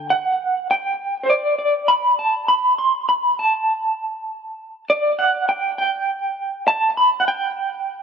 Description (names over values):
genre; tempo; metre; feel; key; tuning
folk; 101 BPM; 3/4; straight; G major; A4 = 441 Hz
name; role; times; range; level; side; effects
electric guitar through a small old amp; melody; 0.0-8.0 s; C5 to C6; -18 LUFS; right 1 dB; tremolo, digital delay
room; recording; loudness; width
moderate lush hall reverb, RT60 2.0 s, small room ambience; worn, warbling old tape, cassette tape, warbly pitch drift; -17 LUFS; side -7 dB against mid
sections
0.0-5.5 A section; 5.5-8.0 B section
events
none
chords
none